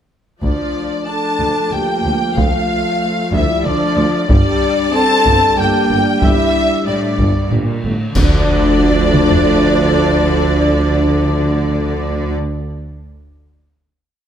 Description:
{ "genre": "cinematic, epic orchestral film score", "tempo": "93 BPM", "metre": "3/4", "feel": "straight", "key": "D minor", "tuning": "A4 = 441 Hz", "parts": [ { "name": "warm symphonic violin section", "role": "melody", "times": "0.4-12.3 s", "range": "D5 to A5", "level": "-23 LUFS", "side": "left 3 dB", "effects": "none" }, { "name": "rich symphonic violin section", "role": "second line", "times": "0.4-12.3 s", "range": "D5 to A5", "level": "-24 LUFS", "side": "equal", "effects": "none" }, { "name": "rich symphonic viola section", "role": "accompaniment", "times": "0.4-12.3 s", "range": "F3 to D4", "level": "-23 LUFS", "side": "equal", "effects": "none" }, { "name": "dark French horn section", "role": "sustained chords", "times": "0.4-12.3 s", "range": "D4 to A4", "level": "-21 LUFS", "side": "left 6 dB", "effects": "none" }, { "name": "dark trombone section", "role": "sustained chords", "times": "0.4-12.3 s", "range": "F3 to D4", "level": "-21 LUFS", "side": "right 4 dB", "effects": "none" }, { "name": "dark trumpet section", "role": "stabs", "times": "0.4-12.3 s", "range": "D5 to A5", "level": "-22 LUFS", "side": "right 1 dB", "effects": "none" }, { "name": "clear symphonic cello section", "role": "bass", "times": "0.4-12.3 s", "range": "D2 to D3", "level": "-21 LUFS", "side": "equal", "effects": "none" }, { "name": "rich symphonic double bass section", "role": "bass", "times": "0.4-12.4 s", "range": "G1 to D2", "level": "-21 LUFS", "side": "right 1 dB", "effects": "none" }, { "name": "warm tuba", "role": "bass", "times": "0.4-12.3 s", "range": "G1 to D2", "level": "-22 LUFS", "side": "right 3 dB", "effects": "none" }, { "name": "taiko ensemble", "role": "drums", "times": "0.4-9.4 s", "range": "none", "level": "-18 LUFS", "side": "equal", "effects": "none" }, { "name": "cymbal swell, clash cymbals and concert bass drum", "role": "percussion", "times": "4.3-9.4 s", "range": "none", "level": "-22 LUFS", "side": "equal", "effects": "none" } ], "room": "moderate scoring stage reverb, RT60 1.9 s", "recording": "none", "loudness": "-12 LUFS", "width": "side -9 dB against mid", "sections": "0.4-8.2 theme; 8.2-12.0 final chord", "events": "band accent 8.2-8.8", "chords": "0.4 Dm; 4.3 Gm; 8.2 Dm", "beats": "| 0.43 1.08 1.72 | 2.36 3.01 3.65 | 4.29 4.94 5.58 | 6.22 6.87 7.51 | 8.16 8.80 9.45 | 10.09 10.74 11.38" }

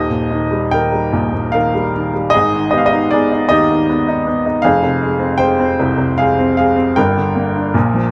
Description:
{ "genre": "classical, lyrical solo piano", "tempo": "71-80 BPM", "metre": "3/4", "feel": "rubato", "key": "Eb major", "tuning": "A4 = 440 Hz", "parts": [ { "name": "clear upright piano", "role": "solo", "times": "0.0-8.1 s", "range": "Eb1 to G5", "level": "-15 LUFS", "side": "equal", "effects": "none" } ], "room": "light reverb", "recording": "close, detailed microphones", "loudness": "-15 LUFS", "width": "mono", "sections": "0.0-8.1 A section", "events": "none", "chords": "0.0 Eb; 2.3 Abm; 4.6 Fm; 7.0 Gm", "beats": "0.74 1.54 | 2.32 3.11 3.88 | 4.63 5.39 6.17 | 6.96 7.75" }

